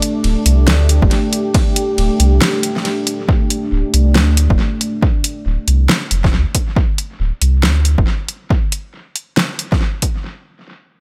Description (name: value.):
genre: deep dubstep.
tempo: 138 BPM.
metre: 4/4.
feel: swing 60% on 16ths, half-time.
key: D minor.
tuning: A4 = 440 Hz.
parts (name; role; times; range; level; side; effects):
deep dark ambient pad; sustained chords; 0.0-5.0 s; A3 to D5; -22 LUFS; equal; chorus, built-in reverb.
deep house drum kit; drums; 0.0-10.1 s; hi-hat, ride cymbal, snare drum; -21 LUFS; equal; overdrive, tape echo.
soft dub sub bass; bass; 0.2-8.1 s; D1 to D2; -15 LUFS; equal; tube saturation.
electronic kick drum; drums; 1.0-10.1 s; none; -17 LUFS; equal; overdrive.
room: digital ambience.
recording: echo-heavy mix.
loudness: -15 LUFS.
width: mono.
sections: 0.0-3.3 A section; 3.3-10.2 B section.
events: drop 0.0-3.3; break 2.4-3.3.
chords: 0.0 D5.